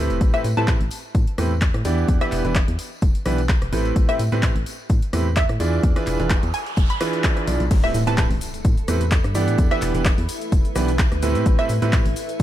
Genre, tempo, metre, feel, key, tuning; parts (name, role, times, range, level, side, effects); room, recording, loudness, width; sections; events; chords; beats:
piano house; 128 BPM; 4/4; swing 54% on 16ths; A minor; A4 = 440 Hz
bright concert grand piano; riff; 0.0-12.0 s; A2 to D5; -25 LUFS; right 3 dB; sidechain pumping
solid FM bass; bass; 0.0-12.4 s; E1 to A2; -23 LUFS; equal; tube saturation, sidechain pumping
punchy analog drum machine; drums; 0.1-12.4 s; cabasa, crash cymbal, handclaps, hi-hat, rim click; -29 LUFS; left 1 dB; overdrive, small room ambience
tambourine; percussion; 0.1-12.4 s; -42 LUFS; left 4 dB
electronic kick drum; drums; 0.2-12.4 s; -19 LUFS; equal; overdrive, small room ambience
hollow square pluck; melody; 0.3-11.7 s; E5 to B5; -28 LUFS; equal; analog chorus, tape echo
noise sweep and impact; sound effects; 6.1-9.6 s; -32 LUFS; equal
granular cloud pad; texture; 8.6-12.4 s; E4 to B5; -31 LUFS; equal; built-in reverb, sidechain pumping
little or no reverb; -18 LUFS; side -13 dB against mid
0.0-7.7 A section; 7.7-12.4 B section
noise sweep 6.1-7.7; drop 7.7-12.4; impact 7.7-9.6
0.2 Am9; 2.1 Em7; 3.7 Am9; 5.8 E7b9; 7.7 Am9; 9.6 Em7; 11.2 Am9
| 0.21 0.68 1.15 1.62 | 2.08 2.55 3.02 3.49 | 3.96 4.43 4.90 5.37 | 5.83 6.30 6.77 7.24 | 7.71 8.18 8.65 9.12 | 9.59 10.05 10.52 10.99 | 11.46 11.93 12.40